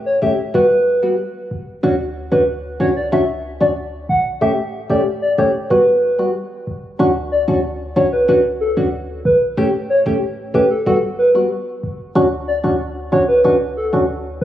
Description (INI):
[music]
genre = dancehall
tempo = 93 BPM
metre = 4/4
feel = straight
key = D major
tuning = A4 = 438 Hz
[part]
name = clean 808-style bass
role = bass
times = 0.0-14.4 s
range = F#1 to D2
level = -26 LUFS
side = equal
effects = none
[part]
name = hollow clarinet-like synth lead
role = melody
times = 0.1-14.4 s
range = A4 to F#5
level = -16 LUFS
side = equal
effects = chorus, phaser, digital delay
[part]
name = percussive organ stab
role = accompaniment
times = 0.2-14.1 s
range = G3 to G4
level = -19 LUFS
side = equal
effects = chorus
[sound]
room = moderate lush hall reverb, RT60 2.4 s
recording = recorded on a phone in the room, club reverb, compression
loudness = -14 LUFS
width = side -12 dB against mid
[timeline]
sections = 0.0-7.0 A section; 7.0-14.4 B section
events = none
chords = 0.0 A7; 0.5 Gmaj7; 1.8 Dmaj7; 4.4 A7; 5.7 Gmaj7; 7.0 Dmaj7; 9.6 A7; 10.9 Gmaj7; 12.2 Dmaj7